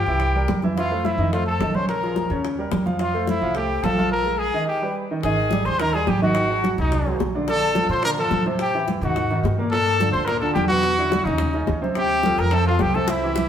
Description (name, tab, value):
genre	Afro-Cuban jazz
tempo	214 BPM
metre	4/4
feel	straight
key	unclear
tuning	A4 = 444 Hz
part	warm trumpet	melody	0.0-13.5 s	Eb4 to C5	-24 LUFS	equal	none
part	breathy bright concert flute	second line	0.0-13.5 s	Eb5 to C6	-28 LUFS	left 3 dB	none
part	warm grand piano	accompaniment	0.0-13.5 s	Bb2 to F5	-25 LUFS	right 1 dB	none
part	upright bass	bass	0.1-13.4 s	Ab1 to Bb2	-26 LUFS	equal	none
part	bongos	percussion	0.1-13.4 s	none	-30 LUFS	left 4 dB	none
part	congas	percussion	0.2-13.5 s	none	-27 LUFS	right 1 dB	none
room	wet stone room reverb, RT60 1.4 s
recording	band playing live in one room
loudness	-19 LUFS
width	side -9 dB against mid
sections	0.0-5.2 A section; 5.2-13.5 B section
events	drum fill 13.1-13.5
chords	0.2 C7; 0.8 Fmaj7; 1.3 F7; 1.9 Bbm7; 2.4 Eb9; 3.0 Fmaj7; 4.1 Bb5; 4.7 Ebaug; 5.2 Ab5; 6.4 Ab9; 7.5 Bbmaj9; 8.6 Am7; 9.2 Absus2; 9.7 Gm9; 10.8 Esus2; 11.4 Cmadd9; 12.0 Dm7